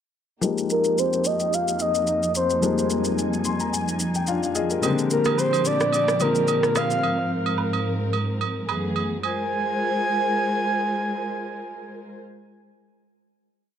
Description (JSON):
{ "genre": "amapiano", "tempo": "109 BPM", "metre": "4/4", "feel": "swing 55% on 16ths", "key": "Ab lydian", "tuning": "A4 = 440 Hz", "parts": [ { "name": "clear grand piano", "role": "accompaniment", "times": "0.4-7.1 s", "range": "Db3 to C6", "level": "-25 LUFS", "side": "left 5 dB", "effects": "low-pass filter" }, { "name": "dark studio string section", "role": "sustained chords", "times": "0.4-12.2 s", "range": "F2 to Ab5", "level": "-27 LUFS", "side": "right 1 dB", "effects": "low-pass filter" }, { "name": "electronic shaker and rim click", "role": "drums", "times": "0.4-7.0 s", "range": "none", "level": "-28 LUFS", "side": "left 1 dB", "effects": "none" }, { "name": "breathy flute-like synth lead", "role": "melody", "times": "0.7-12.2 s", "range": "Bb4 to Ab5", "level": "-23 LUFS", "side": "equal", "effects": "chorus, low-pass filter, digital delay" }, { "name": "agogo bells and woodblock", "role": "percussion", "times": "4.8-9.5 s", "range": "none", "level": "-30 LUFS", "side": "right 10 dB", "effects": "none" } ], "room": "light reverb, small room ambience", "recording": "dark, warm production", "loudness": "-21 LUFS", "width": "side -8 dB against mid", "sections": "0.4-9.2 breakdown; 9.2-11.4 final chord", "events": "filter sweep 0.4-9.2; grand piano fill 3.2-4.8", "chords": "0.4 Fm11; 4.8 Bb13; 7.0 Ab69; 8.7 Gbm11; 9.2 Ab69", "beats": "| 0.42 0.97 1.52 2.08 | 2.63 3.18 3.73 4.28 | 4.83 5.38 5.93 6.48 | 7.03 7.58 8.13 8.68 | 9.23 9.78 10.33 10.88" }